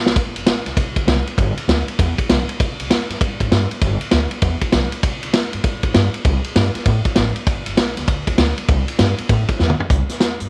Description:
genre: rockabilly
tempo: 197 BPM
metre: 4/4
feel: swing 64% on 8ths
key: C major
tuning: A4 = 440 Hz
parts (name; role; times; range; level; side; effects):
- upright bass; bass; 0.1-10.5 s; F1 to A2; -23 LUFS; equal; none
- vintage drum kit; drums; 0.1-10.5 s; hi-hat, kick drum, ride cymbal, snare drum, toms; -20 LUFS; equal; none
room: light reverb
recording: none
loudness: -18 LUFS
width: mono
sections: 0.2-9.9 A section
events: drum fill 0.0, 9.6-9.9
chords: none

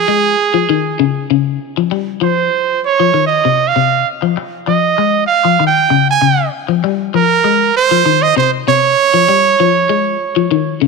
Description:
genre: afrobeat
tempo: 98 BPM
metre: 4/4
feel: straight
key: unclear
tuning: A4 = 438 Hz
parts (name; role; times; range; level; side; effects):
- brilliant trumpet; melody; 0.0-10.8 s; Ab4 to Ab5; -12 LUFS; right 8 dB; none
- electric guitar at the edge of break-up; arpeggios; 0.0-10.9 s; C3 to Ab3; -15 LUFS; left 14 dB; phaser
room: light reverb, studio ambience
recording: 1960s-style stereo with parts hard left and right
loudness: -11 LUFS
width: side -3 dB against mid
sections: 0.0-10.9 A section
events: none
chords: 0.0 Dbsus2; 1.6 F5; 4.1 Dbadd9; 6.5 Fm7; 9.0 Dbadd9

